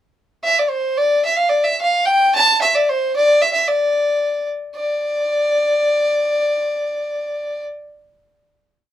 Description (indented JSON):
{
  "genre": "klezmer",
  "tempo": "111 BPM",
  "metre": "2/4",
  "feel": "straight",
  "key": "D minor",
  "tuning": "A4 = 440 Hz",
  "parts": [
    { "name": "dark violin", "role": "solo", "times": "0.4-7.6 s", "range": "C5 to A5", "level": "-15 LUFS", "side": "equal", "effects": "none" }
  ],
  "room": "moderate small room reverb, RT60 0.5 s",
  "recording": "minimal, uncompressed stereo recording",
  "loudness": "-15 LUFS",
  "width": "side -12 dB against mid",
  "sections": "0.4-4.7 A section; 4.7-6.9 final note",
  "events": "none",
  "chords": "none"
}